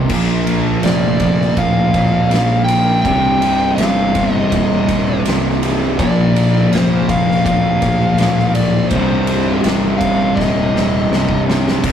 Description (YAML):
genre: stoner and doom metal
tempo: 82 BPM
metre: 4/4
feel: straight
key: C minor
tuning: A4 = 442 Hz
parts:
  - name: distorted electric guitar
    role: riff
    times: 0.0-11.9 s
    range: C2 to Bb3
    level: -22 LUFS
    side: equal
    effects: overdrive
  - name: fuzz guitar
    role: riff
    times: 0.0-11.9 s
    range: C2 to Bb3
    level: -16 LUFS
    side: equal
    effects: distortion
  - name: fuzz fingered electric bass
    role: bass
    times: 0.0-11.9 s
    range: C1 to Bb1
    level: -22 LUFS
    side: equal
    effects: overdrive, tube saturation
  - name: oversized low-tuned drum kit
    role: drums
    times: 0.1-11.9 s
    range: crash cymbal, kick drum, ride cymbal, snare drum, splash cymbal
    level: -20 LUFS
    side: equal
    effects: none
  - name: fuzz lead guitar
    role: melody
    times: 0.8-11.4 s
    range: C5 to G5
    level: -19 LUFS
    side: equal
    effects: distortion
room: light reverb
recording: rough rehearsal-room recording, tube saturation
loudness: -12 LUFS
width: side -9 dB against mid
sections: 0.0-11.8 A section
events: drum fill 10.4-11.8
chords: 0.1 Bb; 3.0 Cm; 6.0 Bb; 8.9 Cm